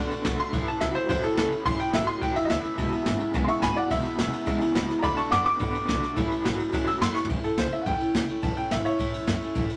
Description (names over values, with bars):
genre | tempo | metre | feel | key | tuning
rockabilly | 213 BPM | 4/4 | straight | A major | A4 = 438 Hz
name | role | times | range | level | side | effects
picked steel-string acoustic guitar | accompaniment | 0.0-9.8 s | E2 to F#4 | -32 LUFS | equal | none
electric guitar through a small old amp | riff | 0.0-7.3 s | E2 to B3 | -34 LUFS | equal | tremolo
upright bass | bass | 0.0-9.7 s | E1 to B2 | -36 LUFS | equal | none
jazz brush drum kit | drums | 0.1-9.8 s | kick drum, ride cymbal, snare drum, toms | -33 LUFS | equal | none
clear upright piano | melody | 0.4-9.7 s | A4 to E6 | -30 LUFS | equal | none
room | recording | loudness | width
moderate small room ambience, RT60 0.5 s | none | -26 LUFS | mono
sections
0.0-7.3 A section; 7.3-9.8 B section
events
upright piano solo 0.0-7.3; drum fill 7.2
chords
0.0 D; 0.5 A; 2.8 E; 5.0 D; 6.2 A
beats
0.25 | 0.53 0.81 1.09 1.38 | 1.66 1.94 2.22 2.50 | 2.78 3.06 3.35 3.63 | 3.91 4.19 4.48 4.76 | 5.04 5.32 5.61 5.89 | 6.17 6.45 6.74 7.02 | 7.30 7.58 7.86 8.15 | 8.43 8.71 8.99 9.28 | 9.56